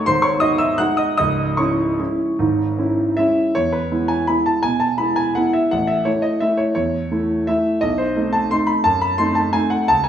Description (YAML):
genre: classical, piano waltz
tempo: 146-180 BPM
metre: 3/4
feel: rubato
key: C# minor, E major from 3.6 s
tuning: A4 = 440 Hz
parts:
  - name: clear concert grand piano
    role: solo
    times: 0.0-10.1 s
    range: C#1 to F#6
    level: -16 LUFS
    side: equal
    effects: none
room: wet recital hall reverb, RT60 1.6 s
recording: small room ambience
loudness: -16 LUFS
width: side -9 dB against mid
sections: 0.0-3.6 A section; 3.6-10.1 B section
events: none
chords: 0.1 G#7; 1.2 C#m; 3.6 E; 5.7 A; 7.8 B7b9